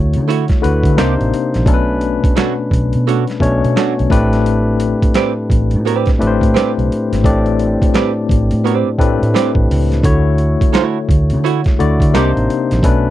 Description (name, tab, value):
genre	R&B, neo-soul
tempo	86 BPM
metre	4/4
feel	swing 63% on 16ths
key	unclear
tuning	A4 = 440 Hz
part	barky tine electric piano	accompaniment	0.0-13.1 s	A2 to D5	-16 LUFS	left 4 dB	medium stereo tremolo
part	vintage muted fingered electric bass	bass	0.0-13.1 s	G#1 to D3	-16 LUFS	right 1 dB	none
part	boom bap sampler-style drum kit	drums	0.1-13.0 s	hi-hat, kick drum, snare drum	-16 LUFS	right 1 dB	none
part	archtop guitar, miked and amplified	second line	0.3-12.3 s	A3 to D5	-16 LUFS	right 12 dB	none
room	little or no reverb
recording	dry, close 1970s-style studio recording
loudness	-12 LUFS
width	side -13 dB against mid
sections	0.0-13.1 A section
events	none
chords	0.0 Dmaj9; 1.0 Cm9; 1.7 Bm9; 4.1 Am11; 10.0 Dmaj9; 12.1 Cm9